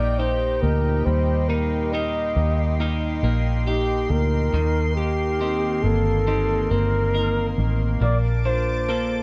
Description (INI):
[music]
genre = pop ballad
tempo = 69 BPM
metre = 4/4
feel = straight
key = unclear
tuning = A4 = 439 Hz
[part]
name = breathy flugelhorn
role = melody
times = 0.0-9.2 s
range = G4 to Eb5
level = -28 LUFS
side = equal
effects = tape echo
[part]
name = warm concert grand piano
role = accompaniment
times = 0.0-9.2 s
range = Bb2 to F4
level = -31 LUFS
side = equal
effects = none
[part]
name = lush unison pad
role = sustained chords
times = 0.0-9.2 s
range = Bb3 to D6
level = -34 LUFS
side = equal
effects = chorus
[part]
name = twelve-string electric guitar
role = arpeggios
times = 0.0-9.2 s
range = Bb2 to Bb4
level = -34 LUFS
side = equal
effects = none
[part]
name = vintage muted fingered electric bass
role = bass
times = 0.0-9.2 s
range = G1 to Eb2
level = -25 LUFS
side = equal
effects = none
[sound]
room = light reverb, small room reverb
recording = dark, warm production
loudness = -22 LUFS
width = mono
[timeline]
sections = 0.0-9.2 A section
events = none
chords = 0.0 Eb; 4.5 Cm7; 8.0 Bbmaj7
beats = 0.19 | 1.06 1.93 2.80 3.67 | 4.54 5.41 6.28 7.15 | 8.02 8.89